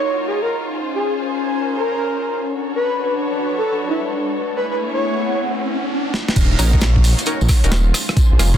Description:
UK garage, two-step garage; 133 BPM; 4/4; swing 66% on 16ths; A4 = 440 Hz
breathy flute-like synth lead; melody; 0.0-5.4 s; Fb4 to Db5; -22 LUFS; equal; tremolo, analog chorus, cassette tape, dub echo
muted symphonic violin section; sustained chords; 0.0-8.6 s; Db4 to Db5; -28 LUFS; left 1 dB; sidechain pumping
airy breathy pad; texture; 0.0-8.6 s; A3 to Ab5; -24 LUFS; left 2 dB; chorus, sidechain pumping
riser and downlifter; sound effects; 3.8-8.6 s; -28 LUFS; equal
boom bap sampler-style drum kit; drums; 6.1-8.6 s; crash cymbal, hi-hat, rim click, snare drum; -22 LUFS; right 1 dB; overdrive
dark detuned saw bass; bass; 6.4-8.6 s; Eb1 to Bb1; -15 LUFS; equal; sidechain pumping
electronic kick drum; drums; 6.4-8.6 s; -15 LUFS; equal; overdrive
tambourine; percussion; 6.4-8.6 s; -27 LUFS; left 1 dB
punchy chord stab; stabs; 6.6-8.6 s; Ab3 to Bb4; -26 LUFS; left 1 dB; chorus, dub echo
light reverb; dense, heavily limited modern master; -16 LUFS; side -10 dB against mid
0.0-6.4 A section; 6.4-8.6 B section
riser 3.8-6.4; drum fill 6.1; drop 6.4-8.6
0.0 Ebm7; 0.7 Bbm7; 2.5 Bm7; 4.6 Gbm7; 6.4 Ebm7; 7.9 Bbm7

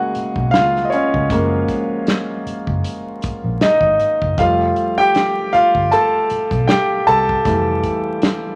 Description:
R&B, neo-soul; 78 BPM; 4/4; swing 55% on 16ths; A4 = 440 Hz
clear concert grand piano; accompaniment; 0.0-8.6 s; C#3 to A5; -18 LUFS; equal
damped 70s drum kit; drums; 0.1-8.4 s; hi-hat, kick drum, snare drum; -24 LUFS; equal
vintage muted fingered electric bass; bass; 0.2-7.8 s; F1 to C#2; -25 LUFS; equal
moderate large studio reverb, RT60 1.2 s; vinyl crackle, faint mains hum; -17 LUFS; mono
0.0-8.6 A section
grand piano solo 0.0-8.6
0.0 F#maj9; 4.4 Fmaj9

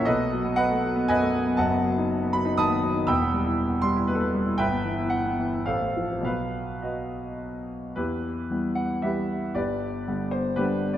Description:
classical, romantic character piece for solo piano; 102-122 BPM; 3/4; rubato; E minor; A4 = 441 Hz
clear concert grand piano; solo; 0.0-11.0 s; E1 to E6; -23 LUFS; equal
wet recital hall reverb, RT60 1.6 s; -23 LUFS; side -11 dB against mid
0.0-8.0 A section; 8.0-11.0 B section
0.1 B7; 1.6 B7/F#; 3.1 Em; 4.6 Em/G; 5.7 F/A; 6.2 B; 8.0 Em; 9.6 G

